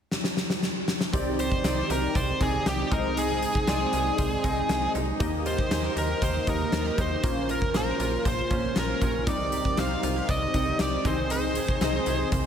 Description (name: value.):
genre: 1980s-style pop.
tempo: 118 BPM.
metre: 4/4.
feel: straight.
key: unclear.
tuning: A4 = 440 Hz.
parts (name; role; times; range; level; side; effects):
huge arena drum kit; drums; 0.1-12.4 s; hi-hat, kick drum, snare drum; -28 LUFS; equal; gated reverb.
warm analog keys; accompaniment; 1.1-12.5 s; Bb3 to Eb5; -30 LUFS; equal; chorus.
direct-recorded clean electric guitar; riff; 1.1-12.5 s; Bb3 to D5; -37 LUFS; right 6 dB; lush chorus, ping-pong delay.
funky polysynth comp; stabs; 1.1-12.5 s; Eb3 to Eb5; -36 LUFS; left 1 dB; chorus, ping-pong delay.
slap-like FM bass; bass; 1.1-12.5 s; Bb1 to Eb2; -32 LUFS; equal; none.
smooth overdriven lead guitar; melody; 1.4-12.3 s; G4 to F5; -29 LUFS; equal; ping-pong delay.
room: light reverb, small room reverb.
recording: none.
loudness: -24 LUFS.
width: side -8 dB against mid.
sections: 0.0-1.1 A section; 1.1-12.5 B section.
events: drum fill 0.1-1.1.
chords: 0.0 N.C.; 1.1 Cmadd9; 2.9 Ab/C; 5.2 Eb; 7.2 Bbmadd9; 9.3 Cmadd9; 11.1 Ab/C.